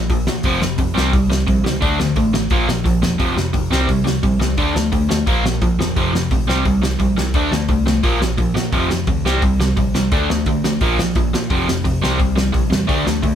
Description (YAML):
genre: punk rock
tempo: 173 BPM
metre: 4/4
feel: straight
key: unclear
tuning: A4 = 440 Hz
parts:
  - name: crunchy overdriven guitar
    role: riff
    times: 0.0-13.3 s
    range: F2 to D4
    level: -18 LUFS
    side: equal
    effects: none
  - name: overdriven picked electric bass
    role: bass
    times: 0.0-13.3 s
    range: E1 to Bb2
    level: -22 LUFS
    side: equal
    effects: none
  - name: loose indie drum kit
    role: drums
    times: 0.1-13.3 s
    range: hi-hat, kick drum, snare drum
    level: -20 LUFS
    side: equal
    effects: none
room: light reverb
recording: band playing live in one room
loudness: -15 LUFS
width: side -9 dB against mid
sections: 0.0-13.3 A section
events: none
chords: 0.4 F5; 1.0 C5; 1.8 D5; 2.5 Bb5; 3.2 F5; 3.7 C5; 4.6 D5; 5.3 Bb5; 6.0 F5; 6.5 C5; 7.3 D5; 8.0 Bb5; 8.7 F5; 9.3 C5; 10.1 D5; 10.8 Bb5; 11.5 F5; 12.0 C